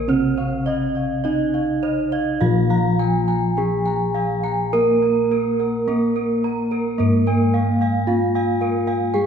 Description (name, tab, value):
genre	Javanese gamelan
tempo	52-58 BPM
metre	4/4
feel	straight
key	Bb slendro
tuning	A4 = 439 Hz
part	gamelan-type bronze metallophone	melody	0.0-9.3 s	Bb3 to Bb4	-21 LUFS	right 2 dB	none
part	gamelan-type bronze metallophone	accompaniment	0.0-9.3 s	C3+40c to Bb3	-24 LUFS	left 1 dB	none
part	gamelan-type bossed gongs	arpeggios	0.0-9.2 s	Bb4 to Bb5	-28 LUFS	left 3 dB	none
part	gamelan-type bronze metallophone	arpeggios	0.0-9.3 s	Bb4 to Bb5	-27 LUFS	right 4 dB	none
part	gamelan-type bossed gongs	bass	0.0-9.3 s	Bb1 to Bb4	-24 LUFS	left 1 dB	none
room	wet scoring stage reverb, RT60 1.5 s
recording	recorded in a church or concert hall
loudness	-17 LUFS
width	side -7 dB against mid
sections	0.0-9.3 A section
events	none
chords	none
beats	| 0.09 1.25 2.41 3.57 | 4.73 5.88 6.99 8.08 | 9.14